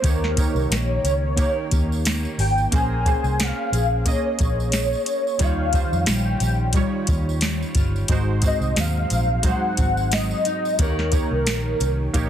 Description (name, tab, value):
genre	indie pop, bedroom pop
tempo	89 BPM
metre	4/4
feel	swing 55% on 16ths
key	unclear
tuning	A4 = 440 Hz
part	warm velvety synth lead	melody	0.0-12.3 s	Bb4 to Ab5	-25 LUFS	left 1 dB	ensemble chorus, ping-pong delay
part	nylon-string guitar	accompaniment	0.0-12.3 s	Ab2 to C5	-30 LUFS	left 3 dB	lush chorus, warbly pitch drift
part	warm analog keys	accompaniment	0.0-12.3 s	G3 to Eb5	-29 LUFS	right 5 dB	chorus, cassette tape
part	vintage muted fingered electric bass	bass	0.0-12.3 s	G1 to F2	-23 LUFS	equal	none
part	soft vintage rhythm box	drums	0.0-12.3 s	hi-hat, kick drum, snare drum	-23 LUFS	equal	none
part	tambourine	percussion	0.1-12.3 s	none	-37 LUFS	right 8 dB	none
room	light reverb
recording	dense, heavily limited modern master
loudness	-19 LUFS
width	side -10 dB against mid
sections	0.0-12.3 A section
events	none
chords	0.0 Eb7; 2.7 Bbm9; 5.4 Eb9; 8.1 Ab7; 10.8 Eb7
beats	| 0.04 0.71 1.38 2.05 | 2.72 3.39 4.06 4.73 | 5.40 6.08 6.75 7.42 | 8.10 8.77 9.44 10.12 | 10.79 11.47 12.14